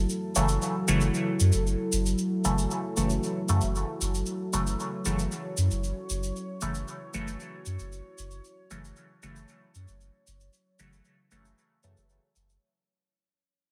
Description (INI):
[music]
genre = dub techno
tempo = 115 BPM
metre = 4/4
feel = straight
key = F# minor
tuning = A4 = 444 Hz
[part]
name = deep dark ambient pad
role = sustained chords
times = 0.0-12.6 s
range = F#3 to C#5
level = -35 LUFS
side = equal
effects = chorus, built-in reverb
[part]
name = soft dub sub bass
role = bass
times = 0.0-12.6 s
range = F#1 to F#2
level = -30 LUFS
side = equal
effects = none
[part]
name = tube shaker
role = percussion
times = 0.1-12.6 s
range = none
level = -36 LUFS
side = equal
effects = none
[part]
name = resonant sweep polysynth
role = stabs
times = 0.4-11.9 s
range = C#3 to A3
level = -33 LUFS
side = equal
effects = chorus, phaser, dub echo
[sound]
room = moderate lush hall reverb, RT60 2.3 s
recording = none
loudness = -28 LUFS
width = mono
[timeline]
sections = 0.0-12.6 A section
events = fade-out 0.0-12.6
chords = 0.0 F#m7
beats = | 0.10 0.62 1.14 1.66 | 2.18 2.70 3.23 3.75 | 4.27 4.79 5.31 5.83 | 6.36 6.88 7.40 7.92 | 8.44 8.96 9.49 10.01 | 10.53 11.05 11.57 12.10